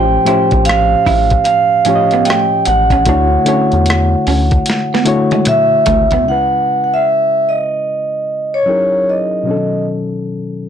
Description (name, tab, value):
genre	R&B, neo-soul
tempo	75 BPM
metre	4/4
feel	swing 63% on 16ths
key	C# minor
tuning	A4 = 439 Hz
part	vibraphone with medium mallets	melody	0.0-9.8 s	C#5 to G5	-13 LUFS	right 2 dB	none
part	electric guitar through a small old amp	second line	0.0-6.2 s	G#3 to E4	-20 LUFS	right 6 dB	none
part	bright reed electric piano	accompaniment	0.0-10.7 s	A2 to D#5	-17 LUFS	left 4 dB	none
part	rubbery square bass	bass	0.0-6.2 s	G#1 to E2	-16 LUFS	equal	transformer saturation
part	dusty soul sampler-style drum kit	drums	0.3-6.3 s	hi-hat, kick drum, rim click, snare drum, toms	-18 LUFS	equal	soft clipping on snare
room	moderate studio reverb, RT60 0.5 s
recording	blown-out, overdriven recording, overdrive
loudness	-11 LUFS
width	side -8 dB against mid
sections	0.0-6.3 A section; 6.3-10.7 B section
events	drum fill 4.7-6.3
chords	0.0 A7alt; 3.1 Dmaj9; 6.3 C#m9; 8.7 F#13; 9.5 B9